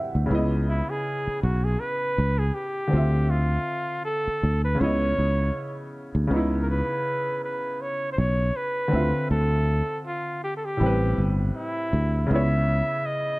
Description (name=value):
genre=lo-fi hip hop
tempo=80 BPM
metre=4/4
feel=swing 57% on 16ths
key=unclear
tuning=A4 = 440 Hz
part: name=felt-muted upright piano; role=accompaniment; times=0.0-13.4 s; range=A2 to B5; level=-29 LUFS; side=equal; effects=low-pass filter
part: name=sustaining fretless electric bass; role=bass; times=0.1-12.8 s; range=G1 to D2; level=-23 LUFS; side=equal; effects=none
part: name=breathy flugelhorn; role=melody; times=0.7-13.4 s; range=E4 to E5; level=-27 LUFS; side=equal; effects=low-pass filter
room=light reverb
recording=dark, warm production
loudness=-22 LUFS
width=side -22 dB against mid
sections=0.0-6.3 A section; 6.3-13.4 B section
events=felt piano fill 0.0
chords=0.3 C#m9; 2.9 Dm9; 4.8 C#m9; 8.9 Dm9; 10.8 Am9; 12.3 C#m9